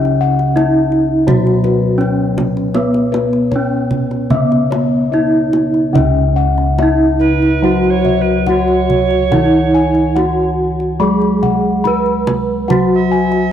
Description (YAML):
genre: Javanese gamelan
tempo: 73 BPM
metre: 4/4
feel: uneven beats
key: C# slendro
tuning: A4 = 440 Hz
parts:
  - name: gamelan-type bronze metallophone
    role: melody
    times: 0.0-13.5 s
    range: B3-25c to B4-25c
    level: -16 LUFS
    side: right 1 dB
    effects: none
  - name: gamelan-type bronze metallophone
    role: accompaniment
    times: 0.0-13.5 s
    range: C#3 to B3-25c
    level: -18 LUFS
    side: equal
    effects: none
  - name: gamelan-type bossed gongs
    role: arpeggios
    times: 0.0-13.5 s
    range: B4-25c to B5-25c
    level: -20 LUFS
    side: left 9 dB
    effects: none
  - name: gamelan-type bossed gongs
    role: bass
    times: 0.0-13.5 s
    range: C#2 to B4-25c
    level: -20 LUFS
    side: equal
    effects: none
  - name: kendang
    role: percussion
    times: 0.1-13.4 s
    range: none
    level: -21 LUFS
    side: right 2 dB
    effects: none
  - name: tenor recorder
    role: second line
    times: 7.2-13.5 s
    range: B4-29c to E5-44c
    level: -20 LUFS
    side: right 10 dB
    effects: none
room: moderate plate reverb, RT60 2.9 s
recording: 1960s-style stereo with parts hard left and right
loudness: -11 LUFS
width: side -9 dB against mid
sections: 0.0-6.0 A section; 6.0-13.5 B section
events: none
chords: none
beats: 0.56 1.28 2.01 | 2.76 3.52 4.31 5.12 | 5.95 6.79 7.63 8.47 | 9.31 10.15 11.00 11.84 | 12.68 13.51